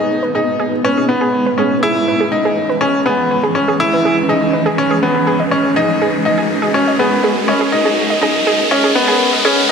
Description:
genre	piano and strings electronica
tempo	122 BPM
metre	4/4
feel	straight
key	unclear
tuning	A4 = 442 Hz
part	granular cloud pad	sustained chords	0.0-9.7 s	E3 to B4	-19 LUFS	right 1 dB	built-in reverb
part	wide unison pluck	arpeggios	0.0-9.6 s	G#4 to D#5	-19 LUFS	right 3 dB	tape echo
part	bright grand piano	riff	0.0-9.7 s	B3 to E4	-15 LUFS	left 1 dB	tape echo
part	clear studio double bass section	bass	0.0-9.7 s	none	barely audible	none	none
part	riser	sound effects	0.8-9.7 s	none	-21 LUFS	right 1 dB	none
room	wet huge ambient reverb, RT60 5.2 s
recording	high-pass filter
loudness	-12 LUFS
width	side -6 dB against mid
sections	0.0-9.7 A section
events	build-up 0.0-9.7; filter sweep on ambient pad 0.0-9.7; filter sweep 0.0-9.7; riser 0.8-9.7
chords	0.0 G#m; 1.8 C#m7; 5.8 F#add9

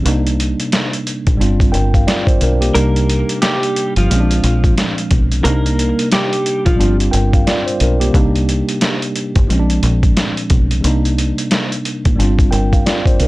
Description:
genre	hip hop, boom-bap hip-hop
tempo	89 BPM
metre	4/4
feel	swing 60% on 16ths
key	C minor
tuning	A4 = 440 Hz
part	mellow tine electric piano	accompaniment	0.0-13.3 s	G2 to G5	-18 LUFS	right 1 dB	medium stereo tremolo, cassette tape, high-pass filter, low-pass filter
part	deep dub fingered electric bass	bass	0.1-13.3 s	G1 to C2	-16 LUFS	equal	tube saturation
part	trip hop sampler-style drum kit	drums	0.1-13.3 s	hi-hat, kick drum, snare drum	-16 LUFS	equal	none
part	clean electric guitar	melody	2.7-7.0 s	F3 to Bb4	-19 LUFS	equal	high-pass filter, low-pass filter, tape echo
room	little or no reverb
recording	dry, gritty hardware recording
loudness	-12 LUFS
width	side -20 dB against mid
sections	0.0-13.3 A section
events	kick muted 2.7-4.1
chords	0.1 Cm7; 1.4 G7sus4; 2.7 Cm7; 4.1 Bb7; 5.4 Cm7; 6.8 G7sus4; 8.1 Cm7; 9.5 Bb7; 10.8 Cm7; 12.2 G7sus4

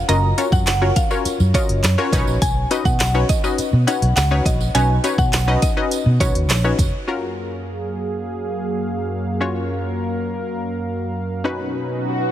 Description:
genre	dance-pop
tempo	103 BPM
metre	4/4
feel	straight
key	F# major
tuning	A4 = 442 Hz
part	mallet-like synth pluck	melody	0.1-6.6 s	C#5 to A#5	-24 LUFS	right 1 dB	chorus, digital delay
part	analog pluck	accompaniment	0.1-12.3 s	C#4 to D#5	-23 LUFS	left 3 dB	chorus, sidechain pumping
part	vintage muted fingered electric bass	bass	0.1-6.9 s	E#1 to B2	-18 LUFS	equal	sidechain pumping
part	deep house drum kit	drums	0.1-6.9 s	handclaps, hi-hat, kick drum, snare drum	-20 LUFS	equal	none
part	tambourine	percussion	0.1-6.9 s	none	-32 LUFS	right 14 dB	none
part	warm analog pad	sustained chords	7.1-12.3 s	F#2 to E#5	-23 LUFS	right 1 dB	chorus, sidechain pumping
part	swell	sound effects	12.0-12.3 s	none	-24 LUFS	equal	none
room	light reverb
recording	heavily compressed radio sound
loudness	-17 LUFS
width	side -12 dB against mid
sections	0.0-7.1 A section; 7.1-12.3 B section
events	drop 0.0-7.1; swell 12.0-12.3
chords	0.0 F#maj7; 2.1 Badd9; 7.1 F#maj7; 11.4 Badd9

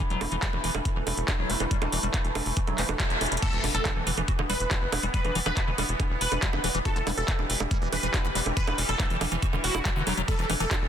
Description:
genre	psychedelic trance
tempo	140 BPM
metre	4/4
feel	straight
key	E minor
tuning	A4 = 442 Hz
part	bubbling stepped-filter texture	sustained chords	0.0-10.9 s	E3 to B3	-35 LUFS	right 1 dB	chorus, built-in reverb, sidechain pumping
part	liquid acid bass	riff	0.0-10.8 s	D3 to F#4	-34 LUFS	moving between left 5 dB and right 4 dB	phaser, auto-pan, sidechain pumping, digital delay
part	drum and bass drum kit	drums	0.0-10.8 s	bongos, crash cymbal, handclaps, hi-hat	-30 LUFS	right 2 dB	none
part	electronic kick drum	drums	0.0-10.8 s	none	-28 LUFS	equal	none
part	warbly tape-like pad	texture	0.0-3.4 s	B5	-40 LUFS	right 1 dB	chorus, built-in reverb, sidechain pumping
part	tight sequencer bass	bass	0.1-10.9 s	E1 to F#1	-31 LUFS	equal	none
part	vowel-sweep wobble bass	second line	1.5-10.2 s	E3 to B3	-44 LUFS	left 4 dB	none
part	supersaw stab	melody	3.4-10.9 s	F#4 to B4	-32 LUFS	right 1 dB	phaser, sidechain pumping, digital delay
part	impact	sound effects	3.4-5.1 s	none	-39 LUFS	equal	none
room	light reverb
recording	dense, heavily limited modern master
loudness	-24 LUFS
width	side -9 dB against mid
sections	0.0-3.4 A section; 3.4-10.9 B section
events	band accent 3.0; drum fill 3.2; drop 3.4-10.9; impact 3.4-5.1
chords	0.0 E5

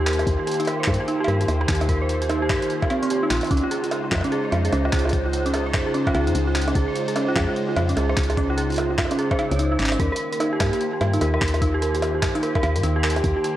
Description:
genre	IDM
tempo	148 BPM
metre	4/4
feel	swing 62% on 16ths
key	Eb mixolydian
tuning	A4 = 440 Hz
part	phased analog pad	sustained chords	0.0-13.6 s	Db3 to C5	-28 LUFS	left 1 dB	phaser, chorus, sidechain pumping
part	dark detuned synth bell	arpeggios	0.0-13.5 s	C4 to Db5	-24 LUFS	right 2 dB	chorus, tremolo, tape echo
part	woody FM bass	bass	0.0-13.3 s	Ab1 to G2	-24 LUFS	equal	tube saturation
part	jungle sampler-style drum kit	drums	0.1-13.5 s	bongos, cowbell, handclaps, hi-hat	-28 LUFS	right 1 dB	none
part	electronic kick drum	drums	0.3-13.3 s	none	-26 LUFS	left 1 dB	none
room	light reverb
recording	dry, gritty hardware recording, cassette tape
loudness	-19 LUFS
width	side -13 dB against mid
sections	0.0-13.6 A section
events	none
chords	0.0 Eb69; 3.5 Dbmaj9; 10.0 Eb69

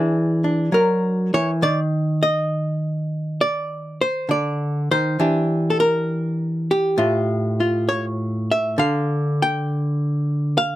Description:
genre	solo jazz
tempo	67 BPM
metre	4/4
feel	swing 68% on 8ths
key	unclear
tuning	A4 = 439 Hz
part	archtop guitar, miked and amplified	solo	0.0-10.8 s	A2 to G5	-18 LUFS	equal	none
room	little or no reverb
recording	dry, close 1970s-style studio recording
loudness	-18 LUFS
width	side -14 dB against mid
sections	0.0-10.8 A section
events	none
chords	0.0 E9; 1.6 Cmadd9; 5.2 Em7b5; 7.0 A7(no3); 8.8 Dsus4

